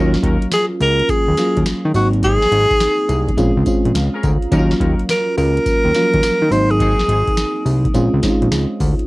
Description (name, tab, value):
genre	R&B, new jack swing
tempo	105 BPM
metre	4/4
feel	swing 66% on 16ths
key	Eb dorian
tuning	A4 = 442 Hz
part	FM electric piano	accompaniment	0.0-9.1 s	F3 to Bb5	-19 LUFS	right 1 dB	chorus
part	warm horn section	stabs	0.0-7.3 s	C4 to Bb4	-29 LUFS	left 2 dB	none
part	fat analog bass	bass	0.0-8.9 s	Ab1 to Eb3	-17 LUFS	equal	none
part	booming analog drum machine	drums	0.1-9.1 s	hi-hat, kick drum, snare drum, tambourine	-21 LUFS	equal	cassette tape
part	warm tenor saxophone	melody	0.5-7.8 s	Gb4 to C5	-17 LUFS	equal	tape echo
room	little or no reverb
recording	home recording on cassette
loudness	-13 LUFS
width	side -21 dB against mid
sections	0.0-9.1 A section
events	FM electric piano fill 3.7-4.5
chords	0.0 Ebm7; 1.9 Ab7; 3.4 Bbm7; 4.5 Ebm7; 6.5 Ab7; 7.9 Bbm7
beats	0.52 1.09 1.66 | 2.23 2.80 3.37 3.94 | 4.52 5.09 5.66 6.23 | 6.80 7.37 7.95 8.52